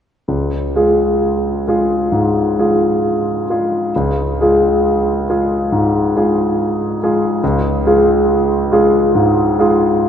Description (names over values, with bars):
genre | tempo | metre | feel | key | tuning
classical | 64-72 BPM | 4/4 | rubato | Db major | A4 = 442 Hz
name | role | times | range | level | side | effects
clear concert grand piano | accompaniment | 0.3-10.1 s | Db2 to Ab4 | -12 LUFS | equal | none
room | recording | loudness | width
wet cathedral reverb, RT60 5.8 s | in a vast, echoing space | -13 LUFS | side -8 dB against mid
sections
0.3-10.1 A section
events
none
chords
0.3 Db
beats
| 0.28 1.20 2.11 3.02 | 3.92 4.83 5.70 6.56 | 7.42 8.26 9.13 9.99